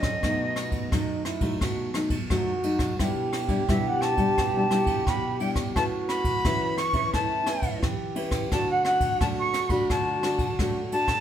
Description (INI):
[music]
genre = samba and choro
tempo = 87 BPM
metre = 4/4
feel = straight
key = D major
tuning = A4 = 438 Hz
[part]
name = jazz flute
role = melody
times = 0.0-11.2 s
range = Eb5 to C#6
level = -27 LUFS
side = left 1 dB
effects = none
[part]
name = mellow trombone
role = second line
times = 0.0-11.2 s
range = B3 to G4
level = -30 LUFS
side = right 3 dB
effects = none
[part]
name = nylon-string guitar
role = accompaniment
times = 0.0-11.2 s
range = F#2 to B4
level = -29 LUFS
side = left 2 dB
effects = none
[part]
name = jazz brush drum kit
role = drums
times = 0.0-11.2 s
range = kick drum, ride cymbal, rim click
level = -28 LUFS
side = equal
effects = none
[sound]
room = moderate stone room reverb, RT60 1.1 s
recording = band playing live in one room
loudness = -23 LUFS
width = side -10 dB against mid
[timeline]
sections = 0.0-11.2 A section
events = none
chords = 0.2 B7; 3.0 Em7/B; 5.8 Aadd9; 8.5 D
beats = | 0.23 0.92 1.61 2.30 | 3.00 3.69 4.38 5.07 | 5.76 6.45 7.14 7.83 | 8.52 9.21 9.90 10.59